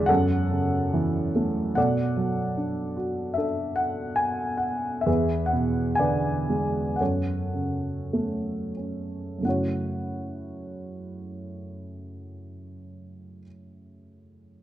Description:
classical, lyrical solo piano; 43-75 BPM; 4/4; rubato; F# minor; A4 = 439 Hz
dark baby grand piano; solo; 0.0-14.6 s; E2 to G#5; -25 LUFS; equal
moderate recital hall reverb, RT60 1.4 s; dark, warm production; -24 LUFS; side -12 dB against mid
0.0-1.8 A section; 1.8-9.5 B section; 9.5-14.6 C section
slowing down 1.8-9.5
0.1 F#m7; 1.8 Bm7; 5.1 E7; 7.0 F#m; 9.5 F#m7

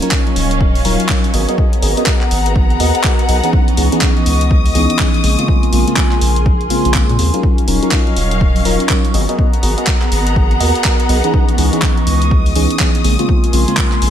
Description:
deep house; 123 BPM; 4/4; swing 61% on 16ths; Eb minor; A4 = 441 Hz
warbly tape-like pad; sustained chords; 0.0-14.1 s; Gb3 to Db6; -22 LUFS; equal; chorus, built-in reverb, sidechain pumping
mellow FM electric piano; stabs; 0.0-14.1 s; Db3 to Eb5; -18 LUFS; equal; chorus, phaser, sidechain pumping, low-pass filter, ping-pong delay
deep house drum kit; drums; 0.0-14.1 s; handclaps, hi-hat; -20 LUFS; equal
warm studio string section; texture; 0.0-14.1 s; Fb3 to Eb6; -22 LUFS; left 1 dB; sidechain pumping
electronic kick drum; drums; 0.1-13.9 s; -15 LUFS; equal
round analog bass; bass; 0.4-14.1 s; Eb1 to Bb2; -16 LUFS; equal; sidechain pumping
light reverb, digital ambience; -11 LUFS; side -10 dB against mid
0.0-14.1 A section
0.0 Ebm9; 1.3 Abm9; 3.5 Dbm9; 5.2 Bbm9; 7.4 Ebm9; 9.1 Abm9; 11.3 Dbm9; 13.0 Bbm9

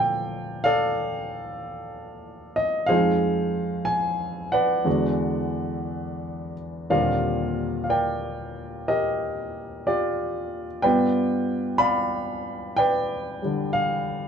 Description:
solo jazz; 62 BPM; 4/4; swing 68% on 8ths, rubato; A4 = 445 Hz
warm baby grand piano; solo; 0.0-14.3 s; Eb2 to B5; -23 LUFS; equal
wet studio reverb, RT60 0.6 s; heard from further back in the room; -22 LUFS; side -7 dB against mid
0.0-14.3 A section
0.0 Bbmaj7; 2.9 Fm7; 4.9 E9; 6.9 Ebmaj13; 10.8 G7

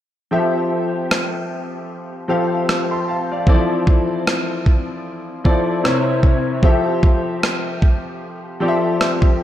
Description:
contemporary R&B; 76 BPM; 4/4; swing 58% on 16ths; F major; A4 = 437 Hz
clear concert grand piano; accompaniment; 0.3-9.4 s; C3 to C6; -19 LUFS; left 1 dB; ensemble chorus
dusty soul sampler-style drum kit; drums; 1.1-9.4 s; kick drum, rim click; -16 LUFS; right 1 dB
moderate plate reverb, RT60 2.7 s; dreamy mix soaked in reverb; -16 LUFS; side -12 dB against mid
0.3-9.4 A section
0.3 Fmaj7; 3.5 Dm9/F; 5.8 C7b9; 6.6 Fmaj7

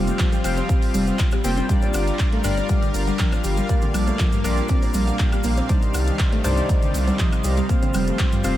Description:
progressive house; 120 BPM; 4/4; straight; A4 = 440 Hz
supersaw pad; sustained chords; 0.0-8.6 s; C3 to F5; -29 LUFS; equal; analog chorus, sidechain pumping
soft round pluck; arpeggios; 0.0-8.4 s; G2 to G4; -26 LUFS; equal; lush chorus, sidechain pumping, diffuse ambient delay
chorused polysynth; stabs; 0.0-8.6 s; Bb2 to G5; -26 LUFS; left 2 dB; sidechain pumping, diffuse ambient delay
saturated sub bass; bass; 0.0-8.6 s; F1 to C2; -23 LUFS; equal; sidechain pumping
big-room dance drum kit; drums; 0.1-8.5 s; handclaps, hi-hat, woodblock; -32 LUFS; equal; sidechain pumping on hats, sidechain pumping on cymbals, sidechain pumping on perc
cabasa; percussion; 0.1-8.5 s; -39 LUFS; right 1 dB
electronic kick drum; drums; 0.2-8.3 s; -20 LUFS; equal
bongos, congas and cowbell; percussion; 0.2-8.3 s; -40 LUFS; left 2 dB
light reverb; -18 LUFS; side -13 dB against mid
0.0-8.6 A section
0.0 Fsus2; 1.7 Gm7; 3.7 Bb6; 5.7 Cmadd9; 7.7 Fsus2

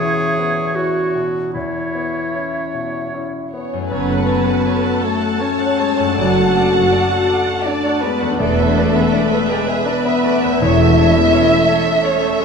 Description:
cinematic, emotional film score for orchestra; 75-86 BPM; 3/4; rubato; A4 = 440 Hz
clear clarinet; second line; 0.0-3.1 s; E4 to G#4; -21 LUFS; right 1 dB
clear oboe; second line; 0.0-3.5 s; C#5; -26 LUFS; right 4 dB
mellow hollow concert flute; second line; 0.0-3.5 s; E5; -28 LUFS; left 1 dB
clear concert grand piano; accompaniment; 0.0-12.4 s; E2 to B4; -24 LUFS; left 2 dB
concert harp; arpeggios; 0.0-12.4 s; E2 to C#5; -26 LUFS; left 6 dB
dark studio violin section; second line; 3.5-12.4 s; G#4 to F#5; -21 LUFS; right 1 dB
mellow French horn section; sustained chords; 3.5-12.4 s; G#3 to F#4; -18 LUFS; left 4 dB
warm studio violin section; melody; 3.9-12.4 s; E5 to A5; -24 LUFS; left 2 dB
rich studio viola section; accompaniment; 3.9-12.4 s; A4 to F#5; -23 LUFS; right 5 dB
warm studio cello section; bass; 3.9-11.2 s; E2 to F#2; -22 LUFS; right 4 dB
warm studio double bass section; bass; 3.9-11.2 s; E1 to F#1; -22 LUFS; right 5 dB
moderate scoring stage reverb, RT60 1.6 s; -14 LUFS; side -5 dB against mid
0.0-3.9 A section; 3.9-12.4 B section
0.0 E5; 3.9 F#m; 6.2 D/F#; 8.4 E7sus4; 10.6 A/E

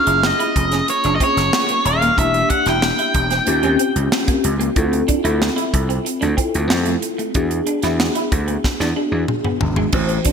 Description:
polished 1980s jazz-funk pop; 93 BPM; 4/4; straight; A4 = 438 Hz
octave-fuzz lead guitar; melody; 0.0-4.0 s; C#5 to G5; -18 LUFS; equal; distortion
mellow tine electric piano; accompaniment; 0.0-10.3 s; E3 to C5; -22 LUFS; left 2 dB; medium stereo tremolo, ensemble chorus
semi-hollow electric guitar; riff; 0.1-10.3 s; G#3 to E4; -26 LUFS; right 4 dB; analog chorus
gritty slap bass; bass; 0.1-10.2 s; D#1 to F2; -21 LUFS; equal; overdrive
tight funk drum kit; drums; 0.1-10.3 s; crash cymbal, hi-hat, kick drum, snare drum, toms; -21 LUFS; equal; gated reverb
moderate lush hall reverb, RT60 2.4 s; bright 1980s-style digital production; -15 LUFS; side -6 dB against mid
0.0-9.9 A section
drum fill 8.6-9.9
0.0 F#maj7; 2.2 Em7b5; 3.5 D#13; 4.8 Dm7; 7.3 E7

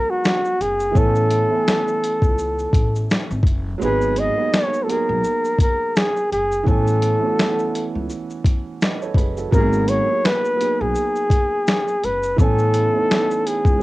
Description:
lo-fi hip hop; 84 BPM; 4/4; swing 56% on 16ths; A4 = 436 Hz
breathy flugelhorn; melody; 0.0-13.8 s; F#4 to D#5; -20 LUFS; left 1 dB; cassette tape
warm upright piano; accompaniment; 0.0-13.8 s; E3 to G#5; -26 LUFS; right 5 dB; cassette tape
boom bap sampler-style drum kit; drums; 0.2-13.8 s; finger snaps, hi-hat, kick drum, shaker, snare drum; -19 LUFS; equal; vintage 12-bit sampler grit, cassette tape
upright bass; bass; 0.6-13.8 s; F#1 to C#2; -23 LUFS; left 1 dB
light reverb; home recording on cassette; -17 LUFS; side -19 dB against mid
0.0-13.8 A section
kick muted 3.8-5.2
0.0 G#m9; 1.0 Amaj7; 3.8 G#m9; 6.7 Amaj7; 9.5 G#m9; 12.4 Amaj7

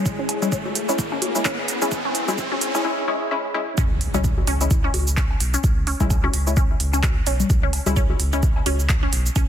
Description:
minimal techno; 129 BPM; 4/4; swing 57% on 16ths; C# minor; A4 = 440 Hz
riser and impact; sound effects; 0.0-5.6 s; -29 LUFS; right 1 dB
deep dark ambient pad; texture; 0.0-2.8 s; E4 to G#5; -30 LUFS; left 1 dB; chorus, built-in reverb, sidechain pumping
round analog bass; bass; 0.1-9.5 s; B1 to C#2; -23 LUFS; equal; sidechain pumping, high-pass filter
electronic kick drum; drums; 0.1-9.5 s; -21 LUFS; equal
minimal click drum kit; drums; 0.1-9.5 s; cabasa, handclaps, hi-hat; -26 LUFS; right 3 dB
resonant blip pluck; riff; 0.2-9.4 s; C#4; -29 LUFS; equal; phaser, sidechain pumping, tape echo
woodblock, congas and bongos; percussion; 0.3-9.5 s; -28 LUFS; left 4 dB
filtered dub chord stab; stabs; 0.4-8.4 s; G#3 to E4; -27 LUFS; left 3 dB; wide subtle chorus, ping-pong delay
light reverb, digital ambience; dense, heavily limited modern master, high-pass filter; -19 LUFS; side -10 dB against mid
0.0-3.8 A section; 3.8-9.5 B section
build-up 0.0-3.8; riser 0.0-2.8; filter sweep on synth pluck 0.0-3.8; drop 3.8-9.5; impact 3.8-5.6
0.0 C#m

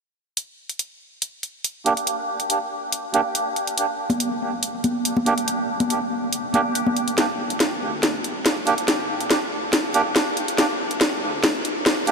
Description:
deep dubstep; 141 BPM; 4/4; half-time; G minor; A4 = 440 Hz
garage drum kit; drums; 0.4-12.1 s; hi-hat, snare drum; -21 LUFS; equal
melodica; stabs; 1.9-12.1 s; Bb3 to G4; -24 LUFS; right 2 dB; low-pass filter, dub echo
congas; percussion; 4.1-6.9 s; -25 LUFS; left 1 dB; dub echo
dark detuned saw bass; bass; 7.2-12.1 s; G1 to D2; -39 LUFS; equal
wet huge ambient reverb, RT60 7.5 s; dreamy mix soaked in reverb; -20 LUFS; side -4 dB against mid
0.4-7.2 A section; 7.2-12.1 B section
build-up 7.2-12.1; drum fill 7.2-12.1
0.4 Gm

